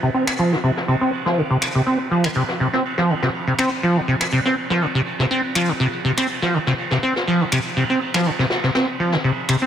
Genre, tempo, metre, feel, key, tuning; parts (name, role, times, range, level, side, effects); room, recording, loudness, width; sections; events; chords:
acid house; 122 BPM; 4/4; swing 53% on 16ths; A4 = 439 Hz
acid bass, saw; riff; 0.0-9.7 s; C3 to C4; -18 LUFS; equal; lush chorus, vintage 12-bit sampler grit, digital delay
jazz brush drum kit; drums; 0.1-9.6 s; hi-hat, ride cymbal, snare drum; -26 LUFS; right 1 dB; high-pass filter on cymbals, low-pass filter on cymbals, high-pass filter on hats, low-pass filter on hats, high-pass filter on snare, low-pass filter on snare, high-pass filter on room, low-pass filter on room
electronic finger snaps; drums; 0.3-9.6 s; -26 LUFS; equal
moderate lush hall reverb, RT60 2.2 s; -17 LUFS; side -9 dB against mid
0.0-9.7 A section